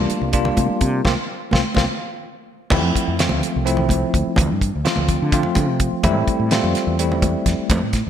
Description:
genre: electric jazz fusion.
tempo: 253 BPM (eighths).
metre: 7/8.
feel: straight.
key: unclear.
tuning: A4 = 440 Hz.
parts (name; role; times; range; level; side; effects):
bell-like tine electric piano; accompaniment; 0.0-7.9 s; F3 to F4; -21 LUFS; left 1 dB; fast stereo tremolo.
fretless electric bass; bass; 0.0-8.1 s; C2 to D3; -22 LUFS; equal; none.
damped 70s drum kit; drums; 0.1-8.0 s; crash cymbal, hi-hat, kick drum, snare drum; -21 LUFS; equal; gated reverb.
congas; percussion; 0.2-7.9 s; none; -26 LUFS; right 2 dB; none.
room: moderate lush hall reverb, RT60 1.8 s, small room ambience.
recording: bright 1980s-style digital production.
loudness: -17 LUFS.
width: side -9 dB against mid.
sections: 0.0-2.7 A section; 2.7-8.1 B section.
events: band accent 1.1-2.7; drum fill 1.3-2.7; tine electric piano fill 2.0-2.7.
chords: 0.0 C7sus4; 2.7 Dm9; 6.0 Fmaj9.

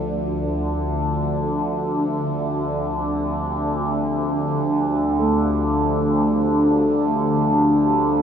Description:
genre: dark ambient drone.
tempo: free time.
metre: none.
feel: none.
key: D minor.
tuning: A4 = 440 Hz.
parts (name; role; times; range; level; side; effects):
deep dark ambient pad; sustained chords; 0.3-8.2 s; D4 to F5; -23 LUFS; equal; chorus, built-in reverb.
overtone-sweeping drone; drone; 0.0-8.2 s; D2 to D3; -21 LUFS; equal; chorus, built-in reverb, phaser.
bronze singing bowl; texture; 0.0-8.2 s; F3 to A4; -27 LUFS; equal; none.
room: wet huge ambient reverb, RT60 8.7 s.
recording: none.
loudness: -18 LUFS.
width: side -8 dB against mid.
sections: 0.0-8.2 A section.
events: none.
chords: 0.0 Dm.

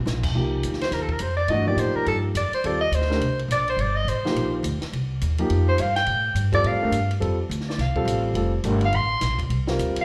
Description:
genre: modal jazz.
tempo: 210 BPM.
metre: 4/4.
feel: swing 61% on 8ths.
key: C dorian.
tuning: A4 = 440 Hz.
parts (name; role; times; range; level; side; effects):
upright bass; bass; 0.0-10.0 s; F1 to A2; -27 LUFS; equal; none.
compact cocktail drum kit; drums; 0.1-10.0 s; crash cymbal, hi-hat, kick drum, ride cymbal, snare drum; -36 LUFS; equal; none.
warm grand piano; accompaniment; 0.3-10.0 s; E3 to Bb4; -29 LUFS; equal; slapback echo.
mellow soprano saxophone; melody; 0.8-10.0 s; A4 to C6; -27 LUFS; equal; slapback echo.
room: moderate digital room reverb, RT60 1.1 s, small room ambience.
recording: live gig heard through the venue's PA, club reverb.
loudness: -23 LUFS.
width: mono.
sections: 0.3-10.0 A section.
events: soprano saxophone solo 0.3-10.0.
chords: 0.3 Cm9; 4.9 Dm7/C; 9.5 C7sus2.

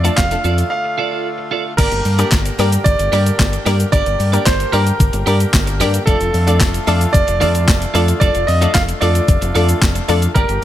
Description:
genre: dance-pop.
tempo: 112 BPM.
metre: 4/4.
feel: straight.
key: G minor.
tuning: A4 = 440 Hz.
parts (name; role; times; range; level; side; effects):
clear grand piano; melody; 0.0-10.6 s; A4 to F5; -20 LUFS; right 2 dB; ping-pong delay.
analog pluck; accompaniment; 0.0-10.6 s; A3 to D5; -22 LUFS; left 4 dB; chorus, sidechain pumping.
pedal harmonium; sustained chords; 0.0-10.6 s; D3 to G4; -26 LUFS; left 3 dB; sidechain pumping.
twelve-string electric guitar; riff; 0.0-10.6 s; F4 to D5; -24 LUFS; right 8 dB; lush chorus.
fingered electric bass; bass; 0.0-10.6 s; F1 to G2; -17 LUFS; equal; sidechain pumping.
crisp 8-bit digital drum machine; drums; 0.0-10.6 s; crash cymbal, handclaps, hi-hat, kick drum, shaker, snare drum; -17 LUFS; equal; overdrive.
tambourine; percussion; 2.3-9.9 s; none; -32 LUFS; left 13 dB; none.
room: little or no reverb.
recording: none.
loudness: -13 LUFS.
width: side -12 dB against mid.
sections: 0.0-1.8 A section; 1.8-10.6 B section.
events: break 0.7-1.8.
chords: 0.0 Dm/F; 1.8 Gm; 6.1 Dm/F.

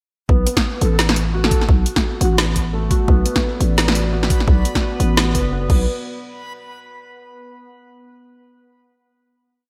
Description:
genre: half-time drum and bass.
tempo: 172 BPM.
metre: 4/4.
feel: swing 58% on 16ths, half-time.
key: B minor.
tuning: A4 = 439 Hz.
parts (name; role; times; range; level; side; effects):
felt-muted upright piano; arpeggios; 0.3-5.9 s; A3 to F#4; -29 LUFS; equal; analog chorus, digital delay.
growling 808-style bass; bass; 0.3-5.9 s; F#1 to B1; -20 LUFS; equal; none.
electronic kick drum; drums; 0.3-5.8 s; none; -20 LUFS; equal; overdrive.
drum and bass drum kit; drums; 0.5-5.8 s; crash cymbal, hi-hat, snare drum; -23 LUFS; equal; overdrive, gated reverb.
breathy flute-like synth lead; melody; 0.8-2.4 s; F#4 to A4; -29 LUFS; equal; lush chorus, digital delay.
dark analog pad; sustained chords; 3.6-5.9 s; B3 to D5; -33 LUFS; equal; chorus, sidechain pumping.
backwards swelling texture; texture; 4.3-5.9 s; B3 to B4; -34 LUFS; equal; built-in reverb.
room: light reverb.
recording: bright 1980s-style digital production.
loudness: -17 LUFS.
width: mono.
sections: 0.3-5.9 drop; 5.9-7.3 final hit.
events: drop 0.3-5.9.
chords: 0.3 Bm; 5.9 N.C..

